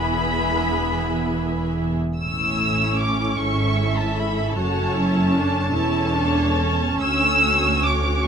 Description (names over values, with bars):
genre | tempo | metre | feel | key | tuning
classical, slow romantic movement for string orchestra | 44-52 BPM (dotted quarters) | 6/8 | rubato | A major | A4 = 439 Hz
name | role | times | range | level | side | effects
muted chamber violin section | melody | 0.0-8.3 s | A5 to E6 | -23 LUFS | left 1 dB | none
muted chamber violin section | second line | 0.0-8.3 s | G#4 to E5 | -28 LUFS | equal | none
muted chamber viola section | accompaniment | 0.0-8.3 s | B3 to F#4 | -25 LUFS | equal | none
muted chamber double bass section | bass | 0.0-8.3 s | E1 to D2 | -26 LUFS | right 2 dB | none
muted symphonic cello section | bass | 0.0-8.3 s | D2 to A2 | -25 LUFS | right 1 dB | none
room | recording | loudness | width
light reverb | minimal, uncompressed stereo recording | -18 LUFS | side -7 dB against mid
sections
0.0-8.3 A section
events
none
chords
0.0 E; 2.2 A; 4.6 F#m; 7.0 Dmaj7